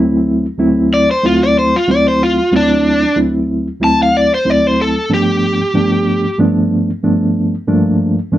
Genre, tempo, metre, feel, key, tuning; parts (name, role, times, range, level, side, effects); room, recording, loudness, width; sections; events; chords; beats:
blues; 93 BPM; 4/4; swing 54% on 16ths; D mixolydian; A4 = 439 Hz
mellow reed electric piano; accompaniment; 0.0-8.4 s; D2 to E4; -13 LUFS; right 1 dB; fast tremolo
overdriven electric guitar; melody; 0.9-6.4 s; D4 to A5; -14 LUFS; left 1 dB
moderate studio reverb, RT60 0.5 s; band playing live in one room; -11 LUFS; side -13 dB against mid
0.0-8.4 A section
0.0 D7; 5.1 G7; 7.7 Gm7
0.59 1.24 1.88 | 2.52 3.17 3.81 4.46 | 5.10 5.75 6.39 7.04 | 7.68 8.33